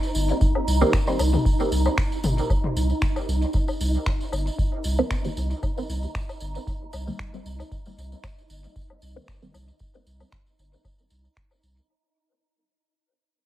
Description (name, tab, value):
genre	dub techno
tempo	115 BPM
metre	4/4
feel	swing 54% on 16ths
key	C minor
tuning	A4 = 442 Hz
part	tambourine	percussion	0.0-11.9 s	none	-39 LUFS	right 1 dB	none
part	wind-like tuned noise texture	texture	0.0-11.9 s	Eb4	-31 LUFS	right 1 dB	built-in reverb, sidechain pumping
part	warm sub bass	bass	0.2-11.8 s	G1 to C2	-24 LUFS	equal	sidechain pumping
part	electronic kick drum	drums	0.4-11.5 s	none	-25 LUFS	equal	none
part	electronic woodblock and toms	percussion	0.6-11.6 s	none	-31 LUFS	left 2 dB	sidechain pumping on perc, sidechain pumping on toms, dub echo
part	filtered dub chord stab	stabs	0.8-1.2, 5.0-9.6 s	Eb3 to C4	-27 LUFS	right 1 dB	phaser, dub echo
part	electronic finger snaps	drums	0.9-11.5 s	none	-33 LUFS	equal	dub echo
room	light reverb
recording	vinyl crackle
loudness	-22 LUFS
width	side -13 dB against mid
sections	0.0-11.9 A section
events	fade-out 0.0-11.9; filter sweep on synth stab 0.0-11.9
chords	0.0 Cm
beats	0.41 0.93 | 1.45 1.98 2.50 3.02 | 3.54 4.06 4.58 5.11 | 5.63 6.15 6.67 7.19 | 7.71 8.24 8.76 9.28 | 9.80 10.32 10.85 11.37